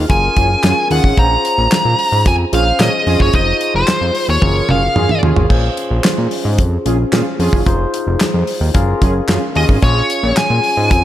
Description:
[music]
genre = early-eighties boogie funk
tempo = 111 BPM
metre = 4/4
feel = straight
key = Bb minor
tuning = A4 = 440 Hz
[part]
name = barky tine electric piano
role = accompaniment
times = 0.0-11.0 s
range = C4 to Db5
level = -21 LUFS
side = left 2 dB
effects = overdrive, phaser, slapback echo
[part]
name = fat analog bass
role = bass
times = 0.0-11.0 s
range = F1 to Bb2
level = -16 LUFS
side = equal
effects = none
[part]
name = nasal lead guitar with a parked wah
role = melody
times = 0.1-5.2, 9.6-11.0 s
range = C5 to Bb5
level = -16 LUFS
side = equal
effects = overdrive
[part]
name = damped 70s drum kit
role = drums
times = 0.1-11.0 s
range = crash cymbal, handclaps, hi-hat, kick drum, snare drum, toms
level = -16 LUFS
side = equal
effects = none
[part]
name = analog synth brass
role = second line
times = 0.4-9.8 s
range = Db4 to Ab4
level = -21 LUFS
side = right 1 dB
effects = chorus, slapback echo
[sound]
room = moderate lush hall reverb, RT60 1.5 s, small room ambience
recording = big arena sound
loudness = -12 LUFS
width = side -12 dB against mid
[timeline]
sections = 0.0-11.0 A section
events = drum fill 4.4-5.5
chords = 0.1 Gbmaj9; 1.2 Bbm9; 3.3 Fm7; 4.4 Gbmaj9; 5.5 Bbm9; 7.7 Fm7; 8.7 Gbmaj9; 9.8 Bbm7

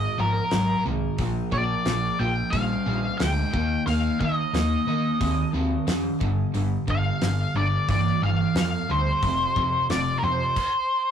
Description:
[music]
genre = classic rock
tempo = 90 BPM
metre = 4/4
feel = straight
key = Bb major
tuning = A4 = 439 Hz
[part]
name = octave-fuzz lead guitar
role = melody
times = 0.0-11.1 s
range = Bb4 to G5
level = -26 LUFS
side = left 1 dB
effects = distortion, tape echo
[part]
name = sludgy distorted guitar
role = riff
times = 0.0-10.5 s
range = F2 to Db4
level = -28 LUFS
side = left 1 dB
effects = overdrive
[part]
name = tight distorted guitar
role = riff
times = 0.0-10.5 s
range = F2 to Db4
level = -30 LUFS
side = right 3 dB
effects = distortion
[part]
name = hollow-body short-scale fingered electric bass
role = bass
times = 0.0-10.4 s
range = F1 to Eb3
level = -27 LUFS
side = equal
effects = none
[part]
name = damped 70s drum kit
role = drums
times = 0.5-10.7 s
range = crash cymbal, hi-hat, kick drum, snare drum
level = -28 LUFS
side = equal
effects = none
[sound]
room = moderate small room reverb, RT60 0.5 s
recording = rough rehearsal-room recording, warm saturation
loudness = -22 LUFS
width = side -8 dB against mid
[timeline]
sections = 0.0-11.1 A section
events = none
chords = 0.0 Ab; 1.2 Bb; 3.5 Eb5; 6.2 G5; 9.2 F5; 10.6 N.C.

